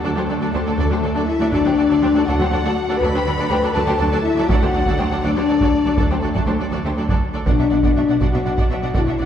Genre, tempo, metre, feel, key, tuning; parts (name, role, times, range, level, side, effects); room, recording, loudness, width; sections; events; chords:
cinematic, epic orchestral film score; 81 BPM (dotted quarters); 6/8; straight; A4 = 440 Hz
warm symphonic violin section; melody; 0.0-9.3 s; A4 to B5; -28 LUFS; left 3 dB
rich symphonic violin section; second line; 0.0-9.2 s; G4 to D5; -28 LUFS; equal
clear symphonic viola section; accompaniment; 0.0-9.3 s; F#3 to D4; -27 LUFS; right 2 dB
mellow French horn section; sustained chords; 0.0-9.3 s; A3 to B4; -20 LUFS; left 4 dB
clear symphonic cello section; bass; 0.0-9.2 s; D2 to B2; -25 LUFS; right 2 dB
clear symphonic double bass section; bass; 0.0-9.3 s; B1 to D2; -26 LUFS; right 2 dB
taiko ensemble; drums; 1.5-9.3 s; -21 LUFS; right 1 dB
timpani; percussion; 7.5-8.2 s; B2; -28 LUFS; right 2 dB
wet scoring stage reverb, RT60 1.5 s; heard from further back in the room; -16 LUFS; side -9 dB against mid
0.0-7.5 A section; 7.5-9.3 B section
0.0 D; 7.5 Bm